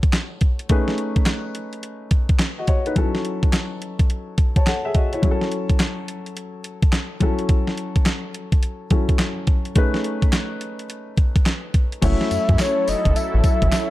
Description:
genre	R&B, new jack swing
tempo	106 BPM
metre	4/4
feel	swing 64% on 16ths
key	F# dorian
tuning	A4 = 440 Hz
part	warm baby grand piano	accompaniment	0.0-13.9 s	F#3 to A5	-26 LUFS	left 2 dB	none
part	crisp 8-bit digital drum machine	drums	0.0-13.9 s	crash cymbal, handclaps, hi-hat, kick drum, snare drum, tambourine	-18 LUFS	equal	overdrive
part	soft octave-layered synth lead	melody	12.0-13.9 s	C#5 to E5	-22 LUFS	left 2 dB	chorus
part	warm analog pad	sustained chords	12.0-13.9 s	F#3 to A4	-27 LUFS	right 2 dB	chorus
part	round analog bass	bass	12.0-13.7 s	F#1 to F#2	-20 LUFS	equal	none
room	digital ambience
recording	dark, warm production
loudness	-18 LUFS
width	side -16 dB against mid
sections	0.0-12.0 A section; 12.0-13.9 B section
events	none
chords	0.0 A6; 0.7 B13; 3.0 F#m7; 9.8 B13; 12.0 F#m7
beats	0.14 | 0.70 1.27 1.83 2.40 | 2.96 3.53 4.10 4.66 | 5.23 5.79 6.36 6.93 | 7.49 8.06 8.62 9.19 | 9.76 10.32 10.89 11.46 | 12.02 12.59 13.15 13.72

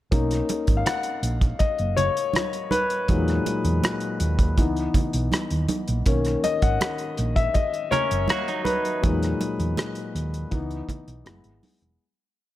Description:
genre	lush 1970s-style soul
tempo	81 BPM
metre	4/4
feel	straight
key	B major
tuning	A4 = 439 Hz
part	warm grand piano	accompaniment	0.1-12.0 s	A#2 to F#5	-25 LUFS	left 4 dB	none
part	hollow-body short-scale fingered electric bass	bass	0.1-12.0 s	E1 to E2	-25 LUFS	right 1 dB	none
part	cloth-damped thuddy drum kit	drums	0.1-12.0 s	hi-hat, kick drum, rim click	-25 LUFS	right 1 dB	none
part	congas	percussion	0.1-12.0 s	none	-30 LUFS	right 5 dB	none
part	clean electric guitar	riff	7.9-9.0 s	F#3 to A#4	-28 LUFS	right 5 dB	none
room	small room ambience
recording	none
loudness	-21 LUFS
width	side -14 dB against mid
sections	0.1-12.0 verse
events	grand piano solo 0.1-12.0; fade-out 9.0-12.0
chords	0.1 Bmaj7; 3.1 Emaj9#11; 4.6 C#m7; 6.1 Bmaj7; 9.0 Emaj9#11; 10.5 C#m7; 11.3 F#7sus4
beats	| 0.12 0.86 1.61 2.35 | 3.09 3.83 4.58 5.32 | 6.07 6.81 7.55 8.29 | 9.04 9.78 10.52 11.26

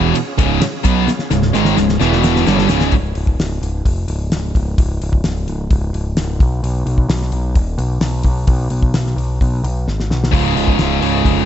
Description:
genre	classic rock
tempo	130 BPM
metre	4/4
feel	straight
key	Db mixolydian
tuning	A4 = 440 Hz
part	tonewheel organ	sustained chords	0.0-2.9 s	B3 to E5	-27 LUFS	right 1 dB	slow rotary speaker, overdrive, chorus vibrato
part	overdriven semi-hollow guitar	riff	0.0-2.9, 10.3-11.5 s	Db2 to F4	-17 LUFS	right 9 dB	none
part	tight distorted guitar	riff	0.0-2.9, 10.3-11.5 s	Db2 to Cb4	-18 LUFS	left 12 dB	distortion
part	growling picked electric bass	bass	0.0-11.5 s	Db1 to Cb2	-19 LUFS	equal	overdrive
part	tube shaker	percussion	0.1-2.9 s	none	-38 LUFS	right 9 dB	none
part	damped 70s drum kit	drums	0.2-11.4 s	hi-hat, kick drum, ride cymbal, snare drum	-18 LUFS	left 1 dB	none
room	light reverb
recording	nothing above 8.0 kHz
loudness	-14 LUFS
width	side -10 dB against mid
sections	0.0-2.9 A section; 2.9-11.5 B section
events	drum fill 1.1-2.9, 9.9-10.3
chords	0.0 Db; 2.0 E5; 2.5 Db; 2.9 N.C.; 10.3 Db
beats	0.15 0.61 | 1.07 1.54 2.00 2.46 | 2.93 3.39 3.85 4.32 | 4.78 5.24 5.71 6.17 | 6.63 7.09 7.55 8.02 | 8.48 8.94 9.40 9.86 | 10.32 10.79 11.24

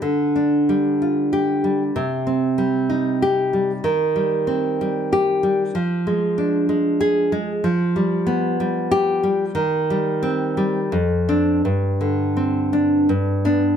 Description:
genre	romantic piece for solo classical guitar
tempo	81-97 BPM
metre	3/4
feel	rubato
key	C minor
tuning	A4 = 440 Hz
part	nylon-string guitar	solo	0.0-13.8 s	F2 to Ab4	-18 LUFS	equal	none
room	light reverb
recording	close, detailed microphones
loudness	-18 LUFS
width	side -8 dB against mid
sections	0.0-13.8 A section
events	none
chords	0.0 G5/D; 1.9 Cm; 3.8 Cm/Eb; 5.7 Ddim/F; 7.6 G7/F; 9.6 Cm/Eb; 10.9 Dm7/F; 11.7 Gsus4; 13.1 G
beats	| 0.02 0.68 1.32 | 1.94 2.57 3.20 | 3.83 4.48 5.12 | 5.75 6.38 7.01 | 7.64 8.27 8.92 | 9.57 10.24 10.94 | 11.66 12.37 13.10

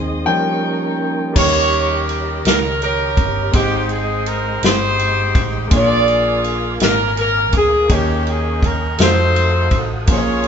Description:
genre	slow gospel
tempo	55 BPM (dotted quarters)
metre	6/8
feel	straight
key	unclear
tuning	A4 = 440 Hz
part	clear concert grand piano	accompaniment	0.0-10.5 s	Ab2 to G5	-22 LUFS	equal	none
part	muted studio string section	sustained chords	0.0-1.4 s	Eb5 to Eb6	-31 LUFS	left 1 dB	none
part	tonewheel organ	sustained chords	0.0-10.5 s	G3 to Eb6	-28 LUFS	right 2 dB	slow rotary speaker, chorus vibrato
part	hollow-body short-scale fingered electric bass	bass	0.0-10.5 s	G1 to F2	-22 LUFS	equal	none
part	clear horn section	melody	1.4-10.5 s	Bb3 to D5	-17 LUFS	equal	none
part	natural country drum kit	drums	1.4-10.5 s	crash cymbal, kick drum, ride cymbal, snare drum	-18 LUFS	equal	none
room	moderate stone room reverb, RT60 1.0 s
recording	band playing live in one room, nothing above 7.7 kHz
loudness	-14 LUFS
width	side -7 dB against mid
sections	0.0-1.4 A section; 1.4-10.5 B section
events	grand piano solo 0.0-1.4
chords	0.3 Eb7; 3.5 Abmaj7; 5.7 Bb7; 7.9 Eb7; 9.0 F7b9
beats	0.27 | 1.36 2.45 | 3.54 4.63 | 5.72 6.81 | 7.90 8.99 | 10.08

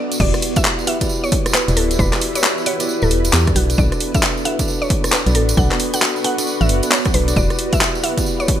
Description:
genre	UK garage, two-step garage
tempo	134 BPM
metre	4/4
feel	swing 62% on 16ths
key	E dorian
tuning	A4 = 441 Hz
part	mallet-like synth pluck	melody	0.0-8.6 s	F#4 to F#5	-24 LUFS	right 1 dB	chorus, ping-pong delay
part	warm analog pad	sustained chords	0.0-8.6 s	B3 to B4	-29 LUFS	right 3 dB	chorus, sidechain pumping
part	mellow tine electric piano	stabs	0.0-8.6 s	D4 to F#5	-24 LUFS	equal	ping-pong delay
part	granular cloud pad	texture	0.0-8.6 s	B3 to D5	-27 LUFS	left 1 dB	built-in reverb, sidechain pumping
part	garage drum kit	drums	0.1-8.6 s	crash cymbal, handclaps, hi-hat, rim click	-19 LUFS	equal	overdrive, small room ambience
part	tambourine	percussion	0.1-8.5 s	none	-28 LUFS	right 4 dB	none
part	organ-like FM bass	bass	0.2-7.5 s	D1 to E2	-17 LUFS	equal	sidechain pumping
part	electronic kick drum	drums	0.2-8.6 s	none	-20 LUFS	equal	small room ambience
room	light reverb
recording	bright 1980s-style digital production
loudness	-14 LUFS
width	side -10 dB against mid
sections	0.2-8.6 A section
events	drop 0.2-8.6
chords	0.2 Em9; 3.6 Bm7; 7.4 Em9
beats	| 0.20 0.65 1.09 1.54 | 1.99 2.44 2.89 3.33 | 3.78 4.23 4.68 5.12 | 5.57 6.02 6.47 6.92 | 7.36 7.81 8.26

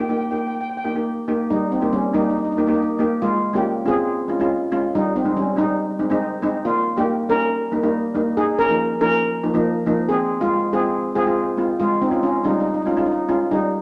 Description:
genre	calypso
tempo	140 BPM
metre	4/4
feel	straight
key	unclear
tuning	A4 = 436 Hz
part	steel pan	melody	0.0-13.8 s	G3 to G5	-23 LUFS	equal	none
part	steel pan	accompaniment	0.0-13.5 s	F3 to G4	-24 LUFS	equal	none
room	wet large studio reverb, RT60 1.2 s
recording	none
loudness	-21 LUFS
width	mono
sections	0.0-1.5 A section; 1.5-13.8 B section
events	none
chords	0.0 Eb; 3.2 Db; 4.9 Abmaj7; 6.6 Eb; 8.4 Ebsus2; 10.1 Fm; 11.8 Db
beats	0.20 0.63 1.06 | 1.49 1.92 2.35 2.78 | 3.21 3.64 4.07 4.50 | 4.93 5.36 5.79 6.22 | 6.65 7.08 7.51 7.94 | 8.37 8.79 9.22 9.65 | 10.08 10.51 10.94 11.37 | 11.80 12.23 12.65 13.08 | 13.51

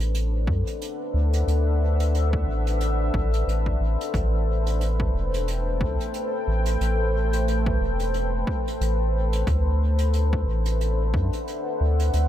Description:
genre	ambient dub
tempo	90 BPM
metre	4/4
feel	swing 57% on 16ths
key	unclear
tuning	A4 = 443 Hz
part	deep dark ambient pad	sustained chords	0.0-12.3 s	A3 to G5	-28 LUFS	left 2 dB	chorus, built-in reverb
part	soft dub sub bass	bass	0.0-12.3 s	E1 to F#2	-22 LUFS	equal	none
part	hi-hat	drums	0.0-12.3 s	none	-40 LUFS	right 5 dB	dub echo
part	electronic kick drum	drums	0.5-11.3 s	none	-28 LUFS	equal	overdrive
room	light reverb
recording	none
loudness	-21 LUFS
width	side -12 dB against mid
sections	0.0-12.3 A section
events	none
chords	0.0 D13; 4.1 Am7; 9.5 D13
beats	0.14 0.81 | 1.47 2.14 2.81 3.47 | 4.14 4.81 5.47 6.14 | 6.81 7.47 8.14 8.81 | 9.47 10.14 10.81 11.47 | 12.14

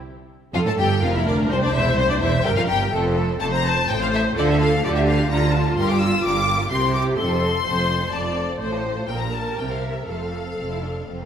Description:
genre	quick classical-period movement for string orchestra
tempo	126 BPM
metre	3/4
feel	rubato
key	F major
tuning	A4 = 440 Hz
part	rich studio violin section	melody	0.5-11.3 s	C5 to E6	-25 LUFS	left 4 dB	none
part	rich studio violin section	second line	0.5-11.3 s	A3 to C5	-28 LUFS	left 4 dB	none
part	rich studio viola section	accompaniment	0.5-11.3 s	F4 to D5	-25 LUFS	equal	none
part	clear studio double bass section	bass	0.5-11.3 s	E1 to D2	-26 LUFS	right 3 dB	none
part	rich studio cello section	bass	0.5-11.3 s	C2 to D3	-24 LUFS	right 2 dB	none
room	moderate scoring stage reverb, RT60 1.9 s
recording	none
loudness	-18 LUFS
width	side -8 dB against mid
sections	0.1-11.3 A section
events	none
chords	0.1 N.C.; 1.0 Bb/F; 1.5 C7; 2.9 F; 3.9 Am7; 4.4 Dm; 5.8 Gm7; 6.7 C7; 7.2 F; 8.6 F/A; 9.1 Gm/Bb; 9.6 C7; 10.1 F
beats	| 0.05 0.54 1.02 | 1.50 1.98 2.45 | 2.93 3.41 3.89 | 4.37 4.84 5.31 | 5.78 6.25 6.71 | 7.18 7.66 8.13 | 8.60 9.08 9.57 | 10.07 10.58 11.08

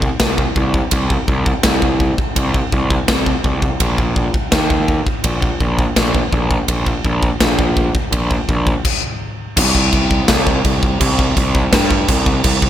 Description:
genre	heavy metal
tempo	83 BPM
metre	4/4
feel	straight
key	C minor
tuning	A4 = 440 Hz
part	fuzz picked electric bass	bass	0.0-12.7 s	Bb1 to G2	-17 LUFS	equal	overdrive
part	tight metal drum kit	drums	0.0-12.7 s	crash cymbal, kick drum, ride cymbal, snare drum	-16 LUFS	equal	none
room	little or no reverb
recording	none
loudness	-14 LUFS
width	side -11 dB against mid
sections	0.0-9.6 A section; 9.6-12.7 B section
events	stop 8.8-9.6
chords	none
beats	0.20 | 0.92 1.65 2.37 3.09 | 3.81 4.53 5.25 5.97 | 6.69 7.41 8.13 8.85 | 9.57 10.29 11.01 11.73 | 12.44

